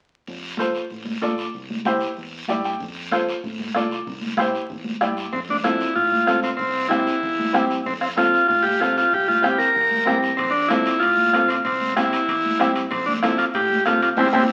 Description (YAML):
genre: latin, cumbia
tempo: 190 BPM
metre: 4/4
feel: straight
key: F major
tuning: A4 = 438 Hz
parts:
  - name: fingered electric bass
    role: bass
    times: 0.3-14.4 s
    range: F1 to A2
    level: -40 LUFS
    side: equal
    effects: none
  - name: congas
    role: percussion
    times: 0.3-14.4 s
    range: none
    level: -32 LUFS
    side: equal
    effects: none
  - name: guiro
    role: percussion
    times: 0.3-14.4 s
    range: none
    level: -37 LUFS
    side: equal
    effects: none
  - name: bright upright piano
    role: accompaniment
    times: 0.6-14.4 s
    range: C4 to G5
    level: -26 LUFS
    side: equal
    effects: none
  - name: bombo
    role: percussion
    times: 2.8-14.4 s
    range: none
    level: -30 LUFS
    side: equal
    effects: none
  - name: combo organ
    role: melody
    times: 5.3-14.4 s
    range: C4 to Bb4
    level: -21 LUFS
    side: equal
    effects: spring reverb
  - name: timbales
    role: percussion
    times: 10.4-14.4 s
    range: none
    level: -33 LUFS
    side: equal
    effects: none
room: moderate studio reverb, RT60 0.8 s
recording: very old 78 rpm record, vinyl crackle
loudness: -21 LUFS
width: mono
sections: 0.3-5.3 A section; 5.3-14.5 B section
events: upright piano fill 2.3-2.8; band accent 14.2-14.5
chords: 0.3 F; 1.5 C; 2.8 F; 4.1 C; 5.3 F; 6.6 C; 7.9 F; 9.1 C7; 10.4 F; 11.7 C; 12.9 F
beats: | 0.27 0.59 0.91 1.22 | 1.54 1.86 2.17 2.49 | 2.81 3.12 3.44 3.75 | 4.07 4.38 4.70 5.02 | 5.33 5.65 5.96 6.28 | 6.60 6.91 7.23 7.54 | 7.86 8.18 8.49 8.81 | 9.12 9.44 9.76 10.07 | 10.39 10.70 11.02 11.34 | 11.65 11.97 12.28 12.60 | 12.91 13.23 13.54 13.86 | 14.18